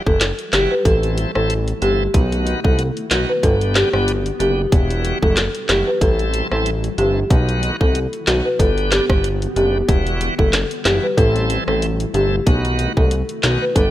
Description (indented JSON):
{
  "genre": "dancehall",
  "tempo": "93 BPM",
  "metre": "4/4",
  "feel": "swing 56% on 16ths",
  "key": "E minor",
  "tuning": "A4 = 440 Hz",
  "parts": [
    { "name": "bright tonewheel organ", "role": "accompaniment", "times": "0.0-13.9 s", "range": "D3 to A4", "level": "-25 LUFS", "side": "equal", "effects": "overdrive, slow rotary speaker, sidechain pumping" },
    { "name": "granular cloud pad", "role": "sustained chords", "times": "0.4-13.9 s", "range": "C3 to G4", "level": "-30 LUFS", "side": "left 1 dB", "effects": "built-in reverb, sidechain pumping" },
    { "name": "folk marimba with medium mallets", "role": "melody", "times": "0.1-13.9 s", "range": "F#4 to B4", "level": "-20 LUFS", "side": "equal", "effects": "ping-pong delay" },
    { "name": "fat analog bass", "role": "bass", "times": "0.1-13.9 s", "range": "E1 to C2", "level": "-20 LUFS", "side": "equal", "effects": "none" },
    { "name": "island pop drum kit", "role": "drums", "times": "0.1-13.9 s", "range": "handclaps, hi-hat, kick drum, rim click, snare drum", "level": "-18 LUFS", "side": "equal", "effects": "none" }
  ],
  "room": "digital ambience",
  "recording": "rough home demo mix",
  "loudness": "-15 LUFS",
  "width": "side -14 dB against mid",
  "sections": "0.0-13.9 A section",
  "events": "none",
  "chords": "0.0 Emadd9; 0.9 Am; 2.1 B; 3.4 G; 4.7 Emadd9; 6.0 Am; 7.3 B; 8.6 G; 9.9 Emadd9; 11.2 Am; 12.5 B"
}